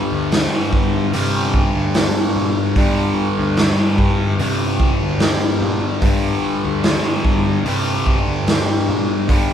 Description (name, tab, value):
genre	psychedelic rock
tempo	74 BPM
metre	4/4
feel	straight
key	unclear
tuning	A4 = 444 Hz
part	fuzz guitar	riff	0.0-9.5 s	G2 to G3	-18 LUFS	left 1 dB	distortion, phaser
part	pedal harmonium	drone	0.0-9.5 s	G2	-30 LUFS	right 1 dB	none
part	fuzz picked electric bass	bass	0.1-9.5 s	D2 to C3	-24 LUFS	left 1 dB	overdrive
part	raw garage drum kit	drums	0.3-9.5 s	hi-hat, kick drum, snare drum	-19 LUFS	equal	none
room	moderate studio reverb, RT60 0.6 s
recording	band playing live in one room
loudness	-15 LUFS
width	side -9 dB against mid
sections	0.0-9.5 A section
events	none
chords	0.0 G5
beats	0.32 1.14 1.95 | 2.77 3.58 4.39 5.21 | 6.02 6.84 7.65 8.47 | 9.29